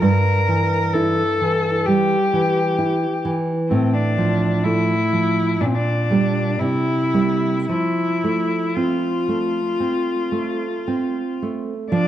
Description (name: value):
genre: romantic duo for cello and classical guitar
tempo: 54-67 BPM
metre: 4/4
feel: rubato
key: F major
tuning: A4 = 439 Hz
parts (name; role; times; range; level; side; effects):
- rich cello; melody; 0.0-12.1 s; C4 to Bb4; -21 LUFS; left 3 dB; none
- nylon-string guitar; accompaniment; 0.0-12.1 s; G2 to E4; -20 LUFS; right 2 dB; none
room: moderate recital hall reverb, RT60 1.8 s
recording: dark, warm production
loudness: -18 LUFS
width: side -11 dB against mid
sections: 0.0-11.9 A section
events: none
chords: 0.0 Gm69; 3.7 F/A; 5.6 Gm/Bb; 6.6 C7; 7.7 F